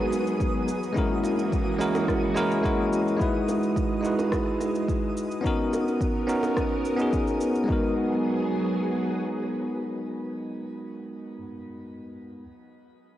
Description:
sunset chillout; 107 BPM; 4/4; straight; G# minor; A4 = 440 Hz
bell-like tine electric piano; accompaniment; 0.0-12.4 s; G#3 to B4; -26 LUFS; equal; auto-pan, cassette tape, analog delay, shimmer reverb
soft string machine; sustained chords; 0.0-10.7 s; E3 to A#4; -31 LUFS; equal; ensemble chorus, vintage 12-bit sampler grit, cassette tape, shimmer reverb
twinkling granular texture; texture; 0.0-7.7 s; D#6; -42 LUFS; equal; built-in reverb, cassette tape, shimmer reverb
electronic shaker and rim click; drums; 0.1-7.7 s; -38 LUFS; equal; cassette tape
bongos; percussion; 0.1-6.5 s; -36 LUFS; right 1 dB
electronic kick drum; drums; 0.4-7.8 s; -29 LUFS; equal; cassette tape
moderate lush hall reverb, RT60 2.0 s; home recording on cassette; -23 LUFS; side -13 dB against mid
0.0-7.7 A section; 7.7-9.9 B section
0.0 G#m7; 0.7 F#7; 3.2 Emaj7; 5.4 Bmaj7; 7.7 G#m7
0.40 | 0.96 1.52 2.08 2.64 | 3.20 3.76 4.32 4.88 | 5.44 6.00 6.57 7.12 | 7.69 8.25 8.81 9.37

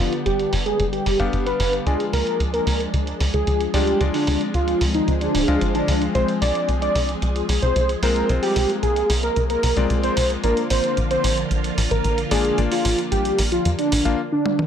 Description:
italo disco; 112 BPM; 4/4; straight; A4 = 439 Hz
wide unison lead; melody; 0.0-14.6 s; D4 to D5; -22 LUFS; equal; analog delay
phased string machine; sustained chords; 0.0-14.2 s; D3 to Ab4; -28 LUFS; equal; ensemble chorus, phaser
clear electric grand piano; stabs; 0.0-14.2 s; Ab3 to F5; -28 LUFS; left 4 dB
tight sequencer bass; bass; 0.0-14.2 s; D1 to F2; -22 LUFS; equal; tube saturation
clean 12-bit digital drum machine; drums; 0.1-14.7 s; hi-hat, toms; -29 LUFS; right 1 dB; low-pass filter on snare, low-pass filter on hats, low-pass filter on perc, low-pass filter on toms, low-pass filter on room
little or no reverb; dry, gritty hardware recording, transformer saturation; -18 LUFS; side -8 dB against mid
0.0-14.7 A section
filter sweep on string machine 0.0-14.7; drum fill 14.5
0.0 G; 1.9 Ddim; 6.2 Fm/C; 10.4 Bb
0.26 0.80 1.33 | 1.87 2.40 2.94 3.47 | 4.01 4.55 5.08 5.62 | 6.15 6.69 7.22 7.76 | 8.30 8.83 9.37 9.90 | 10.44 10.97 11.51 12.05 | 12.58 13.12 13.65 14.19

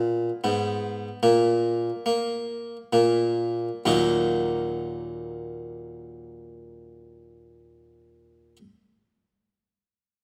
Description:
classical, baroque-style suite movement for harpsichord; 62-79 BPM; 3/4; rubato; Eb minor; A4 = 440 Hz
harpsichord; solo; 0.0-8.6 s; Eb2 to Gb4; -26 LUFS; equal
moderate recital hall reverb, RT60 1.7 s; close, detailed microphones; -25 LUFS; mono
0.0-3.9 A section; 3.9-9.4 B section
slowing down 0.0-3.9
0.4 Abm; 1.2 N.C.; 3.9 Ebm
0.45 | 1.24 2.06 2.94 | 3.87 4.79 5.70 | 6.62 7.55 8.48

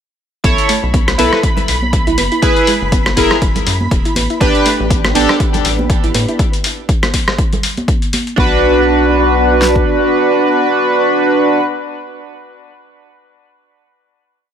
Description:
deep house; 121 BPM; 4/4; swing 56% on 16ths; B minor; A4 = 441 Hz
soft round pluck; arpeggios; 0.4-8.6 s; G#3 to B4; -23 LUFS; right 3 dB; chorus, sidechain pumping, ping-pong delay
chorused polysynth; stabs; 0.4-5.3, 8.4-11.6 s; D4 to C#5; -14 LUFS; right 1 dB; sidechain pumping, ping-pong delay
rubbery square bass; bass; 0.4-9.8 s; E1 to A2; -19 LUFS; equal; tube saturation, sidechain pumping
deep house drum kit; drums; 0.4-9.9 s; kick drum, snare drum; -16 LUFS; equal
dusty soul sampler-style drum kit; drums; 0.4-8.4 s; hi-hat, rim click; -19 LUFS; left 2 dB; overdrive
analog string pad; texture; 0.4-6.4 s; B5; -24 LUFS; right 2 dB; ensemble chorus, sidechain pumping
congas; percussion; 1.1-8.2 s; -25 LUFS; right 2 dB
soft string machine; sustained chords; 4.4-11.6 s; B3 to G4; -21 LUFS; left 1 dB; ensemble chorus, sidechain pumping
light reverb; -11 LUFS; side -8 dB against mid
0.4-8.4 groove; 8.4-12.3 final chord
0.4 B9sus4; 2.4 F#9sus4; 4.2 A9sus4; 6.4 N.C.; 8.4 Bm
| 0.44 0.94 1.44 1.93 | 2.43 2.92 3.42 3.92 | 4.41 4.91 5.40 5.90 | 6.39 6.89 7.39 7.88 | 8.38 8.87 9.37 9.87 | 10.36 10.86 11.35

